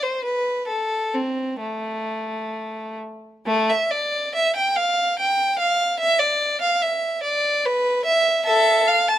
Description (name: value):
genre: classical, baroque-style suite movement for unaccompanied violin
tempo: 62-74 BPM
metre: 3/4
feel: rubato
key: A minor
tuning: A4 = 441 Hz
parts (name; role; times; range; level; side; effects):
- rich violin; solo; 0.0-9.2 s; A3 to A5; -19 LUFS; equal; none
room: light reverb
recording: close, detailed microphones, lossy compression artefacts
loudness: -19 LUFS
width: side -12 dB against mid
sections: 0.0-3.5 A section; 3.5-9.2 B section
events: none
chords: none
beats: | 0.69 1.60 2.53 | 3.46 4.34 5.18 | 6.00 6.82 7.65 | 8.46